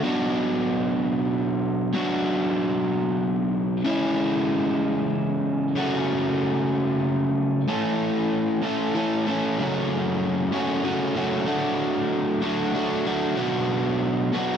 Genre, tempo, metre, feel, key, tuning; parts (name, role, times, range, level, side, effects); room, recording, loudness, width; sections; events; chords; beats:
rock; 63 BPM (dotted quarters); 6/8; straight; A4 = 440 Hz
crunchy overdriven guitar; solo; 0.0-14.6 s; F#2 to A4; -22 LUFS; equal
little or no reverb; dry, close 1970s-style studio recording; -22 LUFS; side -8 dB against mid
0.0-7.7 A section; 7.7-14.6 B section
0.0 Bm; 3.9 C#m; 5.8 F#m/C#; 7.7 A; 9.6 F#m; 11.5 D/F#; 13.4 Bm
| 0.04 0.99 | 1.95 2.90 | 3.85 4.81 | 5.76 6.71 | 7.67 8.62 | 9.58 10.53 | 11.48 12.44 | 13.39 14.35